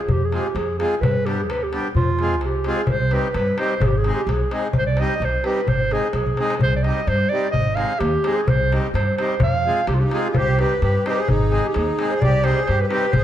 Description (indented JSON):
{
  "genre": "balkan folk, Balkan wedding band",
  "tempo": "129 BPM",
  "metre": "2/4",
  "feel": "swing 54% on 16ths",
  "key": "unclear",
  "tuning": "A4 = 440 Hz",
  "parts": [
    { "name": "warm clarinet", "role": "melody", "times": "0.0-13.2 s", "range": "F4 to F5", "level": "-22 LUFS", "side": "right 2 dB", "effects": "none" },
    { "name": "upright bass", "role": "bass", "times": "0.1-13.2 s", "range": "Ab1 to G2", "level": "-22 LUFS", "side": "equal", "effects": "none" },
    { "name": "darbuka", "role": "percussion", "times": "0.1-13.2 s", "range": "none", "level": "-24 LUFS", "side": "left 1 dB", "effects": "none" },
    { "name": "accordion", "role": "accompaniment", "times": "0.3-13.1 s", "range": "G3 to Ab4", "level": "-26 LUFS", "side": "equal", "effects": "none" },
    { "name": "accordion", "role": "second line", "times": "9.9-13.2 s", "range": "C4 to Ab4", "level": "-26 LUFS", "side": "left 1 dB", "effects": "light tremolo tuning" }
  ],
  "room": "moderate recital hall reverb, RT60 1.8 s",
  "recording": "dark, warm production",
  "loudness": "-18 LUFS",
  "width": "side -11 dB against mid",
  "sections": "0.0-2.9 A section; 2.9-10.4 B section; 10.4-13.2 B section",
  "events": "drum fill 6.3-6.6",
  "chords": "0.0 Fm; 1.0 G; 2.0 Fm; 2.9 Cm; 3.8 Ab; 4.8 Cm; 5.7 Ab; 6.6 Cm; 7.6 Ab; 8.5 Cm; 9.4 Fm; 10.4 Cm; 11.3 Ab; 12.2 Cm"
}